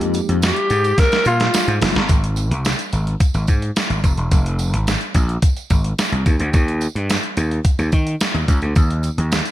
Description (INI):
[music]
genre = early-eighties boogie funk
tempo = 108 BPM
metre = 4/4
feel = straight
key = F minor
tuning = A4 = 443 Hz
[part]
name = mellow tine electric piano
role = accompaniment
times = 0.0-1.9 s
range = F3 to G4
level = -23 LUFS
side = left 3 dB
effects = medium stereo tremolo
[part]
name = gritty slap bass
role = bass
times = 0.0-9.4 s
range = E1 to Eb3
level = -19 LUFS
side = equal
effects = overdrive
[part]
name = clean 12-bit digital drum machine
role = drums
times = 0.0-9.5 s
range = hi-hat, kick drum, snare drum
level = -18 LUFS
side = equal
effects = gated reverb
[part]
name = tambourine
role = percussion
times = 0.1-9.5 s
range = none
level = -33 LUFS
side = right 9 dB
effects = none
[part]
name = growling alto saxophone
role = melody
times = 0.4-1.8 s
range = F4 to Bb4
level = -18 LUFS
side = left 1 dB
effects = slapback echo
[sound]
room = digital ambience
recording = none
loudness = -16 LUFS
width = side -14 dB against mid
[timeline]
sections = 0.0-2.1 A section; 2.1-9.5 B section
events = drum fill 1.0-2.1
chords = 0.0 Fm11; 2.1 N.C.; 4.0 Fm; 6.3 N.C.